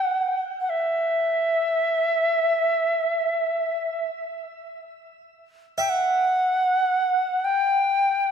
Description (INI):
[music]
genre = world meditative, free-time meditation music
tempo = free time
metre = none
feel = none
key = E hirajoshi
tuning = A4 = 441 Hz
[part]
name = Native American-style cedar flute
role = melody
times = 0.0-8.3 s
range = E5 to G5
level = -21 LUFS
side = equal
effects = shimmer reverb, tape echo
[part]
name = harpsichord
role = texture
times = 5.8-8.3 s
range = E5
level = -31 LUFS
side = right 1 dB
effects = shimmer reverb
[sound]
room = wet church reverb, RT60 2.7 s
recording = none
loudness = -20 LUFS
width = side -7 dB against mid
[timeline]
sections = 0.0-8.3 A section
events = none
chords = none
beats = free time